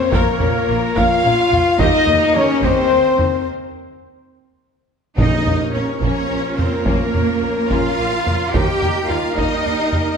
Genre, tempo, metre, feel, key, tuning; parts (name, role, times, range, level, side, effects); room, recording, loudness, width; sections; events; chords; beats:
cinematic, epic orchestral film score; 72 BPM (dotted quarters); 6/8; straight; Bb dorian; A4 = 440 Hz
warm symphonic violin section; melody; 0.0-10.2 s; Bb4 to G5; -26 LUFS; left 5 dB
dark symphonic violin section; second line; 0.0-10.0 s; G3 to F5; -27 LUFS; left 4 dB
mellow hollow flute section; second line; 0.0-3.5 s; Bb4 to F5; -23 LUFS; left 3 dB
rich symphonic viola section; accompaniment; 0.0-10.2 s; Bb3 to Db5; -26 LUFS; right 1 dB
mellow French horn section; sustained chords; 0.0-10.2 s; F3 to F4; -21 LUFS; left 4 dB
warm symphonic string section; sustained chords; 0.0-10.2 s; Bb3 to Eb5; -28 LUFS; equal
mellow trumpet section; stabs; 0.0-10.2 s; Bb4 to F5; -23 LUFS; equal
dark studio double bass section; bass; 0.1-10.0 s; Bb1 to Eb2; -26 LUFS; right 5 dB
warm symphonic cello section; bass; 0.1-10.2 s; Bb2 to G4; -24 LUFS; right 5 dB
solo taiko drums; drums; 0.1-10.2 s; -22 LUFS; equal
timpani; percussion; 5.2-6.0 s; Bb2; -24 LUFS; equal
wet scoring stage reverb, RT60 1.7 s; -14 LUFS; side -6 dB against mid
0.0-5.2 A section; 5.2-10.2 B section
break 3.5-5.2
0.0 Bbm; 1.8 Eb; 5.2 Bbm; 8.5 Eb
| 0.12 0.96 | 1.79 2.63 | 3.47 4.33 | 5.18 6.02 | 6.85 7.70 | 8.53 9.36